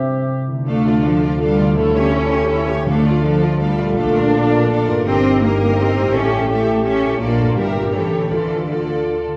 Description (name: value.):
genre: classical, dramatic, fast romantic movement for symphony orchestra.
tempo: 164 BPM.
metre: 3/4.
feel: straight.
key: D minor.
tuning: A4 = 443 Hz.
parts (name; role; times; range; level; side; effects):
clear clarinet; second line; 0.0-0.5 s; C4; -28 LUFS; equal; none.
mellow large flute ensemble; second line; 0.0-0.5 s; E5; -35 LUFS; equal; none.
warm oboe; second line; 0.0-0.5 s; G4; -36 LUFS; equal; none.
mellow bassoon; accompaniment; 0.0-0.5 s; C3; -29 LUFS; equal; none.
concert harp; arpeggios; 0.0-9.4 s; G2 to G4; -26 LUFS; equal; none.
rich symphonic violin section; melody; 0.7-9.2 s; C#5 to F5; -34 LUFS; equal; none.
rich symphonic violin section; second line; 0.7-9.3 s; F4 to C#5; -27 LUFS; equal; none.
warm symphonic viola section; accompaniment; 0.7-9.3 s; D4 to G4; -27 LUFS; equal; none.
mellow French horn section; sustained chords; 0.7-9.3 s; D4 to Bb4; -25 LUFS; equal; none.
clear symphonic cello section; bass; 0.7-9.3 s; D3 to D4; -22 LUFS; equal; none.
clear symphonic double bass section; bass; 0.7-9.3 s; G1 to D2; -24 LUFS; equal; none.
timpani; percussion; 1.8-3.4 s; D3; -28 LUFS; equal; none.
room: wet scoring stage reverb, RT60 1.7 s.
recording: heard from further back in the room.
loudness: -17 LUFS.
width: mono.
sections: 0.7-9.4 A section.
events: none.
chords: 0.0 C; 0.7 Dm; 1.8 A7/D; 2.9 Dm; 4.0 Bbmaj7; 5.1 Eb/G; 6.1 A7; 7.2 Bbmaj7; 7.6 Edim/G; 7.9 A7; 8.3 Dm.